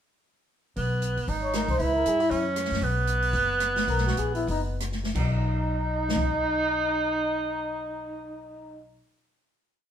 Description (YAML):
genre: jazz, small-group swing and bop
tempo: 165-235 BPM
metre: 4/4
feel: swing 57% on 8ths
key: B major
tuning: A4 = 439 Hz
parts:
  - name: breathy tenor saxophone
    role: second line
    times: 0.8-8.8 s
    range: B3 to E4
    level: -28 LUFS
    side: right 3 dB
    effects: none
  - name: upright bass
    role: bass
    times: 0.8-9.0 s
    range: F#1 to G2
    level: -30 LUFS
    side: left 1 dB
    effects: none
  - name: open jazz drum kit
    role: drums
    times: 0.8-6.2 s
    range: crash cymbal, hi-hat, kick drum, rim click, snare drum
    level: -32 LUFS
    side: left 1 dB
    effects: none
  - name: breathy trumpet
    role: melody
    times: 1.4-8.8 s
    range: D#4 to C#5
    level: -30 LUFS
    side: left 2 dB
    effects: none
room: wet studio reverb, RT60 0.8 s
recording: band playing live in one room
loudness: -24 LUFS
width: side -9 dB against mid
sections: 0.8-5.2 A section; 5.2-8.1 final chord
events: slowing down 2.8-5.2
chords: 0.8 G; 1.3 G#; 1.8 C#m; 2.3 F#5; 2.8 B5; 5.2 B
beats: | 0.77 1.02 1.28 1.54 | 1.79 2.05 2.30 2.56 | 2.82 3.07 3.33 3.60 | 3.88 4.17 4.48 4.80 | 5.15 5.51 5.88 6.24 | 6.61 6.97 7.33 7.70